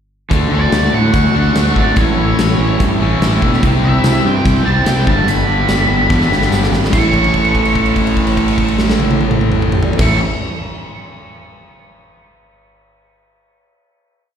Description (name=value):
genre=classic rock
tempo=145 BPM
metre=4/4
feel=straight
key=unclear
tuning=A4 = 440 Hz
part: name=crunchy overdriven guitar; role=riff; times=0.3-10.2 s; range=G2 to F#4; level=-19 LUFS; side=right 12 dB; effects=slapback echo
part: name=distorted electric guitar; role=riff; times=0.3-10.2 s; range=G2 to D4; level=-20 LUFS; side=left 13 dB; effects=distortion, slapback echo
part: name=fuzz fingered electric bass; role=bass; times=0.3-10.2 s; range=E1 to A2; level=-15 LUFS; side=equal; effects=overdrive
part: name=big rock drum kit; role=drums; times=0.3-10.1 s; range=crash cymbal, hi-hat, kick drum, snare drum, toms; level=-18 LUFS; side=equal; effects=none
part: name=octave-fuzz lead guitar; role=melody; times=0.5-10.2 s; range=C#5 to C#6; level=-19 LUFS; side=right 2 dB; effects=wah, distortion, plate reverb, slapback echo
part: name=tambourine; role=percussion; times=4.0-7.1 s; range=none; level=-33 LUFS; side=right 6 dB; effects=none
room=little or no reverb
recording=live gig heard through the venue's PA, recital hall reverb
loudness=-11 LUFS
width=side -8 dB against mid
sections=0.3-6.9 pre-chorus; 6.9-10.2 final chord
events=drum fill 6.1-6.9; held note 6.9-10.0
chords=0.3 D; 2.0 A; 3.6 C; 5.1 G; 6.9 A